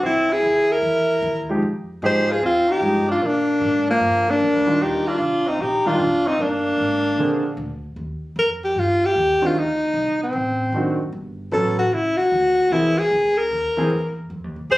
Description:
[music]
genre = jazz, small-group swing and bop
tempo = 151 BPM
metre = 4/4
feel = swing 65% on 8ths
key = Eb major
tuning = A4 = 438 Hz
[part]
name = breathy alto saxophone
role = melody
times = 0.0-14.8 s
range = Bb3 to C5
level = -18 LUFS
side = equal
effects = none
[part]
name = growling tenor saxophone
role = second line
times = 0.0-7.8, 14.7-14.8 s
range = F3 to Ab4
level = -25 LUFS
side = right 1 dB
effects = none
[part]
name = upright bass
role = bass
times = 0.0-14.8 s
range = F1 to Bb2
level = -31 LUFS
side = equal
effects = none
[part]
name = warm concert grand piano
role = accompaniment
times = 1.5-13.9 s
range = D3 to A4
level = -23 LUFS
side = equal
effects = none
[sound]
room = light reverb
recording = recorded on a phone in the room, club reverb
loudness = -18 LUFS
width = side -17 dB against mid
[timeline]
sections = 0.0-8.0 A section; 8.0-14.8 A section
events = none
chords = 0.0 C7alt; 1.6 Fm9; 3.2 Bb7; 4.8 Ebmaj9; 7.2 Bb9; 8.0 Ebadd9; 9.6 D7b9; 11.1 Gmaj9#11; 12.7 C7alt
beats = | 0.02 0.42 0.82 1.22 | 1.62 2.02 2.42 2.82 | 3.21 3.61 4.01 4.41 | 4.80 5.20 5.60 5.99 | 6.39 6.79 7.18 7.58 | 7.97 8.37 8.76 9.16 | 9.55 9.95 10.34 10.74 | 11.13 11.53 11.92 12.32 | 12.71 13.11 13.51 13.90 | 14.30 14.70

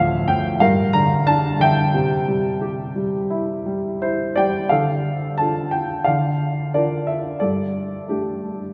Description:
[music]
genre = classical, lyrical solo piano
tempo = 89 BPM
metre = 4/4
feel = rubato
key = D minor from 4.7 s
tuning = A4 = 439 Hz
[part]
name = dark grand piano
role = solo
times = 0.0-8.7 s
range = D2 to Bb5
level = -20 LUFS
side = equal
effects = none
[sound]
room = wet cathedral reverb, RT60 4.0 s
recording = recorded in a church or concert hall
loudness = -21 LUFS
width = mono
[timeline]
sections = 0.0-4.7 A section; 4.7-8.7 B section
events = grand piano fill 3.7-4.7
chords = 0.0 Dm; 0.6 Gm; 2.0 C; 4.7 Dm; 6.1 Bb/D; 7.4 Gsus2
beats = 0.62 1.29 | 1.95 2.62 3.31 4.01 | 4.71 5.39 6.08 6.75 | 7.42 8.08

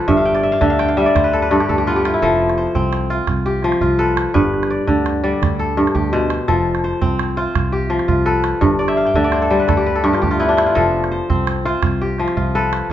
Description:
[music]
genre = west african traditional, West African string and xylophone music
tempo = 112 BPM (dotted quarters)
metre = 12/8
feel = straight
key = F lydian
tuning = A4 = 440 Hz
[part]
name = kora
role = arpeggios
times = 0.0-12.9 s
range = G2 to G5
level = -16 LUFS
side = left 1 dB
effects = none
[part]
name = fingered electric bass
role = bass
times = 0.1-12.9 s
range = F1 to D2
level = -22 LUFS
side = equal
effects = none
[part]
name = calabash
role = percussion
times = 0.1-12.9 s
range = none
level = -23 LUFS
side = right 5 dB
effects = none
[sound]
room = moderate large studio reverb, RT60 1.2 s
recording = band playing live in one room, nothing above 7.6 kHz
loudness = -14 LUFS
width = side -11 dB against mid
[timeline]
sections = 0.0-12.9 A section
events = kora fill 0.1-2.2, 8.8-10.8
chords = 0.1 G; 2.2 F; 4.4 G; 6.5 F; 8.6 G; 10.8 F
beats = | 0.09 0.62 1.16 1.69 | 2.22 2.75 3.29 3.82 | 4.35 4.88 5.42 5.95 | 6.48 7.02 7.55 8.09 | 8.62 9.15 9.69 10.22 | 10.76 11.29 11.83 12.37 | 12.90

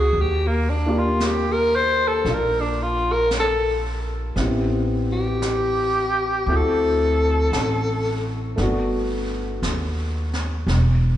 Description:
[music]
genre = jazz ballad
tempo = 57 BPM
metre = 4/4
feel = swing 68% on 8ths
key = unclear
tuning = A4 = 440 Hz
[part]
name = growling alto saxophone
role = melody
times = 0.0-8.3 s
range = Bb3 to C5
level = -21 LUFS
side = left 1 dB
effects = slapback echo
[part]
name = warm upright piano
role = accompaniment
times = 0.0-10.7 s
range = Ab3 to G4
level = -27 LUFS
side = left 1 dB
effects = slapback echo
[part]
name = upright bass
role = bass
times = 0.0-11.2 s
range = E1 to Eb2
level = -23 LUFS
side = equal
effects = none
[part]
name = jazz brush drum kit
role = drums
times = 0.1-11.2 s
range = brushed snare drum, hi-hat, snare drum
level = -32 LUFS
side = equal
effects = none
[sound]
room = light reverb, small room ambience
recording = live gig heard through the venue's PA, club reverb, nothing above 10.8 kHz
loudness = -19 LUFS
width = side -12 dB against mid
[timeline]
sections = 0.0-11.2 A section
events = alto saxophone solo 0.0-11.2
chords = 0.1 Ebmaj9; 4.4 Am7; 6.5 D9; 8.6 Gmaj7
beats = | 0.14 1.20 2.26 3.32 | 4.37 5.42 6.47 7.53 | 8.57 9.63 10.68

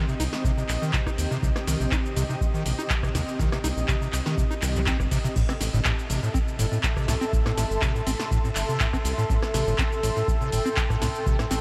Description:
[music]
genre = acid house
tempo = 122 BPM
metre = 4/4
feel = straight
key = unclear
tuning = A4 = 440 Hz
[part]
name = acid bass, square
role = riff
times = 0.0-11.6 s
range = C2 to Eb4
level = -31 LUFS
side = equal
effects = tube saturation, subtle chorus, analog delay
[part]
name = ethereal airy pad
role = texture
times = 0.0-11.6 s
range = C4 to C6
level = -35 LUFS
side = equal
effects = ensemble chorus, built-in reverb, sidechain pumping
[part]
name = electro analog drum machine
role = drums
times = 0.1-11.6 s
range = cabasa, crash cymbal, handclaps, hi-hat, rim click, snare drum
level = -33 LUFS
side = equal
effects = none
[part]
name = round analog bass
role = bass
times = 0.2-11.6 s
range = G1 to Eb2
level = -31 LUFS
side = equal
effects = sidechain pumping
[part]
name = electronic kick drum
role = drums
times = 0.4-11.4 s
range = none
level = -28 LUFS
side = equal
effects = none
[part]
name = warm analog pad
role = sustained chords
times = 5.4-11.6 s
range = A4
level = -35 LUFS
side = equal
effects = chorus, sidechain pumping
[sound]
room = moderate huge ambient reverb, RT60 7.3 s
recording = dreamy mix soaked in reverb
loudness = -25 LUFS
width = mono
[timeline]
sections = 0.0-11.6 A section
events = none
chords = 0.0 Cm; 5.4 Am7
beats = 0.44 0.94 | 1.43 1.92 2.41 2.90 | 3.39 3.89 4.38 4.87 | 5.36 5.85 6.34 6.84 | 7.33 7.82 8.31 8.80 | 9.30 9.79 10.28 10.77 | 11.26

